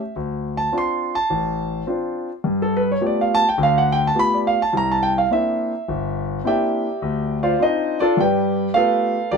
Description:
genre	solo jazz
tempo	105 BPM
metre	4/4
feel	swing 68% on 8ths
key	unclear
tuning	A4 = 439 Hz
part	warm concert grand piano	solo	0.0-9.4 s	G1 to C6	-18 LUFS	equal	none
room	light reverb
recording	minimal, uncompressed stereo recording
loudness	-18 LUFS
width	side -5 dB against mid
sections	0.0-9.3 A section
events	grand piano solo 0.0-9.3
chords	0.2 Dm7; 2.5 G9; 4.7 C9; 7.0 Dm7; 8.2 G9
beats	| 0.17 0.74 1.31 1.88 | 2.46 3.03 3.60 4.17 | 4.74 5.31 5.89 6.46 | 7.03 7.60 8.17 8.74 | 9.32

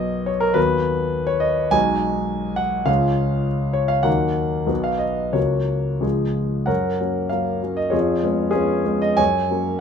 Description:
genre	classical, romantic character piece for solo piano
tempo	87-110 BPM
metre	2/4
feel	rubato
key	F# major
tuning	A4 = 439 Hz
part	clear concert grand piano	solo	0.0-9.8 s	B1 to G#5	-18 LUFS	left 1 dB	none
room	moderate studio reverb, RT60 0.5 s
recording	minimal, uncompressed stereo recording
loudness	-18 LUFS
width	side -7 dB against mid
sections	0.0-6.7 A section; 6.7-9.8 B section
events	none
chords	0.0 B; 0.6 B/D#; 1.7 G#m7/B; 2.9 C#; 4.1 D#m; 4.7 B; 5.4 F#/C#; 6.0 C#; 6.7 F#; 7.9 C#7/E#; 9.2 F#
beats	0.01 | 0.56 1.14 | 1.74 2.31 | 2.88 3.46 | 4.06 4.70 | 5.36 6.04 | 6.69 7.32 | 7.93 8.54 | 9.19

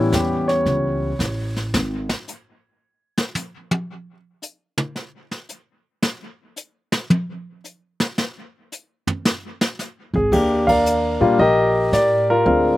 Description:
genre	jazz piano trio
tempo	112 BPM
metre	4/4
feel	swing 67% on 8ths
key	unclear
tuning	A4 = 440 Hz
part	warm concert grand piano	melody	0.0-1.6, 10.2-12.8 s	E3 to F5	-16 LUFS	left 1 dB	slapback echo
part	upright bass	bass	0.0-2.1, 10.1-12.8 s	Ab1 to Bb2	-24 LUFS	equal	none
part	jazz brush drum kit	drums	0.1-12.8 s	brushed snare drum, crash cymbal, hi-hat, kick drum, ride cymbal, snare drum, toms	-22 LUFS	equal	none
room	little or no reverb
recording	recorded outdoors, with no room sound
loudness	-18 LUFS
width	side -16 dB against mid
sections	0.0-10.3 A section; 10.3-12.8 B section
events	grand piano solo 0.0-10.3; drum solo 1.7-10.3; band accent 10.6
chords	0.0 A9; 1.7 N.C.; 10.3 Ebmaj9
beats	0.12 0.66 1.20 | 1.74 2.27 2.81 3.35 | 3.89 4.42 4.96 5.50 | 6.03 6.57 7.10 7.64 | 8.17 8.71 9.24 9.78 | 10.31 10.85 11.38 11.92 | 12.46

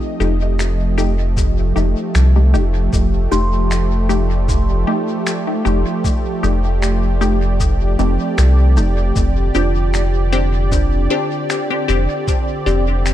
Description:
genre	ambient dub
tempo	77 BPM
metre	4/4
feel	swing 54% on 16ths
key	F mixolydian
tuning	A4 = 440 Hz
part	warm analog pad	sustained chords	0.0-13.1 s	D3 to Eb5	-22 LUFS	right 2 dB	chorus
part	kalimba	arpeggios	0.0-13.0 s	C4 to C6	-28 LUFS	right 4 dB	dub echo
part	filtered dub chord stab	stabs	0.2-12.8 s	A3 to G4	-23 LUFS	left 4 dB	phaser, cassette tape, dub echo
part	round analog bass	bass	0.2-13.1 s	F1 to C2	-15 LUFS	equal	none
part	electronic shaker and finger snaps	drums	0.2-13.1 s	none	-29 LUFS	left 2 dB	studio ambience, dub echo
part	electronic kick drum	drums	1.4-12.4 s	none	-19 LUFS	equal	studio ambience
room	digital ambience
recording	none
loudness	-14 LUFS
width	side -12 dB against mid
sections	0.0-13.1 A section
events	none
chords	0.0 F9; 9.2 Csus2/F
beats	0.59 1.37 2.15 | 2.93 3.71 4.49 5.27 | 6.04 6.82 7.60 8.38 | 9.16 9.94 10.72 11.50 | 12.28 13.06

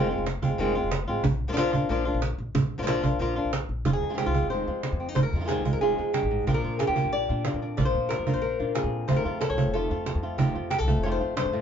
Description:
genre	flamenco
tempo	184 BPM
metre	4/4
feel	straight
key	F minor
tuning	A4 = 437 Hz
part	flamenco guitar	melody	0.0-11.6 s	F2 to D5	-27 LUFS	left 1 dB	none
part	upright bass	bass	0.0-11.6 s	F1 to Bb2	-31 LUFS	equal	none
part	cajon	percussion	0.3-11.6 s	none	-28 LUFS	right 3 dB	none
part	flamenco guitar	stabs	3.9-11.6 s	C3 to F4	-33 LUFS	right 1 dB	none
room	moderate small room reverb, RT60 0.5 s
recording	band playing live in one room, nothing above 7.6 kHz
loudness	-24 LUFS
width	side -8 dB against mid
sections	0.0-3.9 A section; 3.9-11.6 B section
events	none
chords	0.0 Fm7; 1.2 Bb; 3.9 Fm7; 6.5 Bb; 9.1 F7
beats	0.27 0.59 0.92 | 1.25 1.57 1.90 2.23 | 2.55 2.88 3.21 3.53 | 3.86 4.19 4.51 4.84 | 5.17 5.49 5.82 6.15 | 6.47 6.80 7.13 7.46 | 7.78 8.11 8.44 8.76 | 9.09 9.41 9.74 10.07 | 10.39 10.72 11.05 11.37

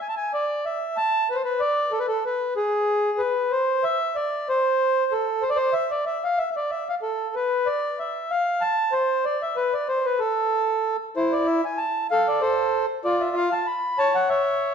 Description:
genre	musette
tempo	188 BPM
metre	3/4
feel	swing 55% on 8ths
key	A harmonic minor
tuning	A4 = 440 Hz
part	mellow accordion	solo	0.0-14.7 s	E4 to B5	-21 LUFS	equal	slapback echo
room	moderate recital hall reverb, RT60 1.4 s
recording	none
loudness	-21 LUFS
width	side -7 dB against mid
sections	0.0-11.1 A section; 11.1-14.7 B section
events	none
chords	none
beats	0.30 | 0.62 0.94 1.27 | 1.59 1.91 2.23 | 2.55 2.87 3.19 | 3.51 3.83 4.16 | 4.47 4.79 5.11 | 5.42 5.74 6.06 | 6.38 6.70 7.02 | 7.34 7.66 7.98 | 8.30 8.61 8.93 | 9.24 9.56 9.87 | 10.19 10.51 10.83 | 11.15 11.47 11.78 | 12.10 12.41 12.72 | 13.04 13.35 13.66 | 13.98 14.29 14.61

